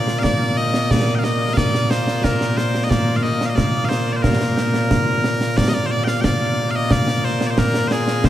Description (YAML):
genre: scottish traditional, Scottish pipe music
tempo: 90 BPM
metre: 2/4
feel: straight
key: Bb major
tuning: A4 = 440 Hz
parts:
  - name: loud bright bagpipes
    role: melody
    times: 0.0-8.3 s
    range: Bb2 to G5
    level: -19 LUFS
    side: equal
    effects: none
  - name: concert snare drum and concert bass drum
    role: drums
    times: 0.1-8.3 s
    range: none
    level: -20 LUFS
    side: right 1 dB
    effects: none
room: wet huge ambient reverb, RT60 7.4 s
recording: heard from further back in the room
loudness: -16 LUFS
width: side -12 dB against mid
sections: 0.0-5.6 A section; 5.6-8.3 A section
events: none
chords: none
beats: | 0.24 0.91 | 1.57 2.24 | 2.91 3.57 | 4.24 4.91 | 5.57 6.24 | 6.91 7.57 | 8.24